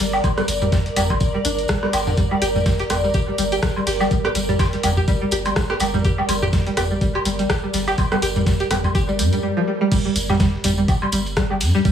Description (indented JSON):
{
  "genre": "minimal techno",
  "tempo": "124 BPM",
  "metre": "4/4",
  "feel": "swing 56% on 16ths",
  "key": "G minor",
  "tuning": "A4 = 440 Hz",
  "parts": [
    { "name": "string-like resonator pluck", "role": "riff", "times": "0.0-11.9 s", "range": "D3 to G4", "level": "-23 LUFS", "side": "equal", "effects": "wide subtle chorus, sidechain pumping, digital delay" },
    { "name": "punchy sub bass", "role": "bass", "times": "0.0-11.8 s", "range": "G1 to G2", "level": "-25 LUFS", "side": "equal", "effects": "sidechain pumping" },
    { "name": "dusty soul sampler-style drum kit", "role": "drums", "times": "0.0-11.9 s", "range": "hi-hat, snare drum, tambourine", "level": "-36 LUFS", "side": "left 1 dB", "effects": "overdrive, high-pass filter on snare, high-pass filter on perc, high-pass filter on hats" },
    { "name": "punchy analog drum machine", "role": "drums", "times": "0.0-11.7 s", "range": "crash cymbal, hi-hat, rim click", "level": "-27 LUFS", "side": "left 1 dB", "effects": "none" },
    { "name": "granular cloud pad", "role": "texture", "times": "0.0-9.4 s", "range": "Bb4 to D5", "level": "-26 LUFS", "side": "equal", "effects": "built-in reverb, sidechain pumping" },
    { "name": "organic electronic drum kit", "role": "percussion", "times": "0.1-11.6 s", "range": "rim click, toms, woodblock", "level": "-23 LUFS", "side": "right 1 dB", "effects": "none" },
    { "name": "tambourine", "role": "percussion", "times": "0.1-11.9 s", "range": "none", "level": "-32 LUFS", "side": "right 1 dB", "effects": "none" },
    { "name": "electronic kick drum", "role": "drums", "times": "0.2-11.9 s", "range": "none", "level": "-20 LUFS", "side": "equal", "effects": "overdrive" },
    { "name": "swell", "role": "sound effects", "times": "9.1-9.9 s", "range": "none", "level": "-27 LUFS", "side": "left 2 dB", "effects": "none" }
  ],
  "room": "light reverb, digital ambience",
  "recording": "studio reverb",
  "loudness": "-17 LUFS",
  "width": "side -9 dB against mid",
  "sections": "0.0-9.9 A section; 9.9-11.9 B section",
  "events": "swell 9.1-9.9; drop 9.9-11.9",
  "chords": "0.0 Gm; 9.9 G5"
}